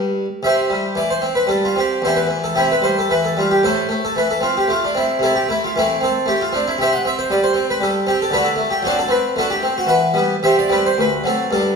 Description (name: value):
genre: classical, baroque-style suite movement for harpsichord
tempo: 114 BPM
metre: 3/4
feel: rubato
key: C major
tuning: A4 = 440 Hz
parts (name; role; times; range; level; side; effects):
- harpsichord; solo; 0.0-11.8 s; D2 to F#5; -15 LUFS; equal; none
room: wet recital hall reverb, RT60 1.4 s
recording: recorded in a church or concert hall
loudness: -15 LUFS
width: side -5 dB against mid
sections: 0.4-11.8 A section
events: none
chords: 0.4 C; 2.0 C/E; 3.6 Am; 5.2 Am/C; 6.8 C5; 8.3 D7; 9.9 Em; 10.4 C5; 11.0 D7